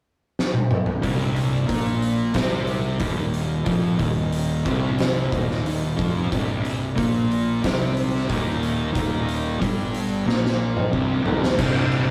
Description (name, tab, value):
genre	stoner and doom metal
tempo	91 BPM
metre	4/4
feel	straight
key	C minor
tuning	A4 = 440 Hz
part	oversized low-tuned drum kit	drums	0.4-12.1 s	crash cymbal, hi-hat, kick drum, snare drum, toms	-27 LUFS	equal	none
part	thick fuzz guitar	riff	1.0-12.1 s	C2 to C4	-26 LUFS	equal	distortion
part	thick fuzz guitar	riff	1.0-12.1 s	C2 to C4	-31 LUFS	equal	distortion
part	fuzz fingered electric bass	bass	1.0-12.1 s	C1 to C2	-31 LUFS	equal	overdrive
room	light reverb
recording	rough rehearsal-room recording, tube saturation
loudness	-23 LUFS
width	mono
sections	0.0-1.0 A section; 1.0-11.6 B section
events	drum fill 0.4-1.0, 10.3-11.6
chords	0.0 N.C.; 1.0 Cm; 11.6 N.C.